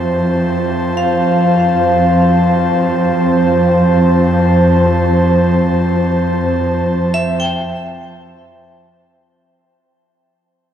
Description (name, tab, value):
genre	ambient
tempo	free time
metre	none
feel	none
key	F major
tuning	A4 = 440 Hz
part	airy breathy pad	sustained chords	0.0-9.2 s	F3 to A5	-14 LUFS	right 1 dB	chorus
part	vibraphone with hard mallets	arpeggios	0.0-9.2 s	E5 to G5	-20 LUFS	left 2 dB	diffuse ambient delay
part	warm symphonic cello section	bass	0.0-9.2 s	F2	-17 LUFS	equal	none
room	wet huge ambient reverb, RT60 8.3 s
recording	dark, warm production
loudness	-11 LUFS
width	side -9 dB against mid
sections	0.0-9.2 A section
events	fade-in on analog synth pad 0.0-9.2; fade-in on vibraphone 0.0-9.2; fade-in on cello section 0.0-9.2; fade-out 4.8-9.2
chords	0.0 Fmaj7